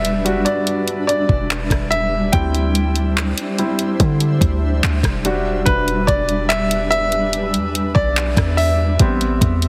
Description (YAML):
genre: contemporary R&B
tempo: 72 BPM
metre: 4/4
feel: straight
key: E minor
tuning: A4 = 440 Hz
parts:
  - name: warm baby grand piano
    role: accompaniment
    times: 0.0-9.7 s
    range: G3 to G5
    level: -22 LUFS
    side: equal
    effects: none
  - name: granular cloud pad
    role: sustained chords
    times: 0.0-9.7 s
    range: C3 to E5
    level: -26 LUFS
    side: equal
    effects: built-in reverb
  - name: warm 808-style bass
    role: bass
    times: 0.0-9.7 s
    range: E1 to D3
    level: -22 LUFS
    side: equal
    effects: none
  - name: smooth R&B drum kit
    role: drums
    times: 0.0-9.7 s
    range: handclaps, hi-hat, kick drum, rim click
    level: -23 LUFS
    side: equal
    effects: none
room: light reverb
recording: heavily compressed radio sound, multiband compression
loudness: -18 LUFS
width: mono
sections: 0.0-9.7 A section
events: grand piano solo 0.0-9.7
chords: 0.0 Em7; 2.3 D9sus4; 5.2 Em7; 9.0 Am7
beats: 0.67 1.50 | 2.33 3.17 4.00 4.83 | 5.67 6.50 7.33 8.16 | 9.00